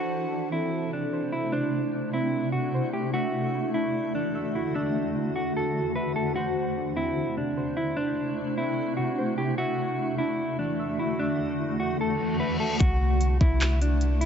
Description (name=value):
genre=hip hop, atmospheric cloud-rap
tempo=149 BPM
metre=4/4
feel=half-time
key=C lydian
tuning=A4 = 439 Hz
part: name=mellow electric guitar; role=melody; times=0.0-14.3 s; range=D4 to B4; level=-29 LUFS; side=equal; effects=tape echo
part: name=granular cloud pad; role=sustained chords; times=0.0-14.3 s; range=E2 to F#4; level=-29 LUFS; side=left 1 dB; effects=built-in reverb
part: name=warbly lo-fi synth keys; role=arpeggios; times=0.0-12.8 s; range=C3 to E5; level=-34 LUFS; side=right 2 dB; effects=chorus, tape echo
part: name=reverse cymbal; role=sound effects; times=12.2-12.8 s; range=none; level=-36 LUFS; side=left 4 dB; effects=none
part: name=warm 808-style bass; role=bass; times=12.8-14.3 s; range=C2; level=-23 LUFS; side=equal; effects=none
part: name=trap drum kit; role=drums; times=12.8-14.3 s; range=handclaps, hi-hat, kick drum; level=-24 LUFS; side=equal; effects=overdrive
room=light reverb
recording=nothing above 7.8 kHz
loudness=-24 LUFS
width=side -8 dB against mid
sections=0.0-12.8 A section; 12.8-14.3 B section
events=reverse cymbal 12.2-12.8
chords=0.0 C69; 3.1 E9sus4; 6.4 C69; 9.6 E9sus4; 12.8 C69